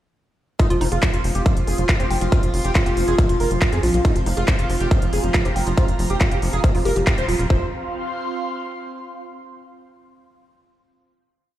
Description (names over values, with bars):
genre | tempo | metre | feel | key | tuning
psychedelic trance | 139 BPM | 4/4 | straight | unclear | A4 = 440 Hz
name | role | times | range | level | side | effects
wide unison lead | melody | 0.6-7.7 s | F3 to C5 | -27 LUFS | right 1 dB | phaser, sidechain pumping, dub echo
evolving wavetable pad | sustained chords | 1.0-7.5 s | F4 | -28 LUFS | equal | phaser, built-in reverb, sidechain pumping
woody wave-folded pluck | riff | 0.6-7.7 s | Eb4 to G5 | -28 LUFS | moving between left 3 dB and right 4 dB | chorus, auto-pan, sidechain pumping, dub echo
big-room dance drum kit | drums | 0.6-7.5 s | handclaps, hi-hat | -28 LUFS | equal | none
electronic kick drum | drums | 0.6-7.6 s | none | -18 LUFS | equal | none
airy breathy pad | texture | 0.6-9.2 s | C4 to C6 | -30 LUFS | right 2 dB | chorus, phaser, sidechain pumping
tight sequencer bass | bass | 0.7-7.7 s | Eb1 to F2 | -22 LUFS | equal | none
room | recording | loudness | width
light reverb | played on a big sound system in a bare room, stone room reverb | -17 LUFS | side -13 dB against mid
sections
0.6-7.5 drop; 7.5-9.2 final chord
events
drop 0.6-7.5; band accent 7.1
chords
0.6 F5